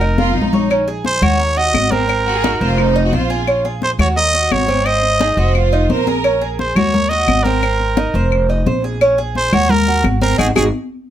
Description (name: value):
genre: latin, Cuban son and guajira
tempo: 174 BPM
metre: 4/4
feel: straight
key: Bb minor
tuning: A4 = 439 Hz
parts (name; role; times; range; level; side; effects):
- growling trumpet; melody; 0.0-10.6 s; Ab4 to Eb5; -17 LUFS; right 2 dB; none
- Cuban tres; arpeggios; 0.0-10.7 s; C4 to Db5; -19 LUFS; right 3 dB; none
- upright bass; bass; 0.0-10.7 s; F1 to Eb2; -18 LUFS; equal; none
- claves; percussion; 0.0-10.6 s; none; -25 LUFS; left 6 dB; none
- congas; percussion; 0.0-10.6 s; none; -20 LUFS; left 3 dB; none
- clear studio violin section; second line; 0.2-6.5 s; Eb4 to Bb4; -22 LUFS; right 4 dB; slapback echo
room: light reverb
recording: none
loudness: -13 LUFS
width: side -11 dB against mid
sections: 0.7-11.1 A section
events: drum fill 0.2-0.7; band accent 10.4-11.1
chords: 0.0 F7sus4; 0.7 Bbm7; 1.4 Ebm; 2.1 Ab69; 2.8 F7sus4; 3.5 Bbm7; 4.2 Ebm7; 4.9 Ab6; 5.6 F7sus4; 6.2 Bbm7; 6.9 Ebm; 7.6 Ab69; 8.3 F7sus4; 9.0 Bbm7; 9.7 Ebm; 10.4 Ab5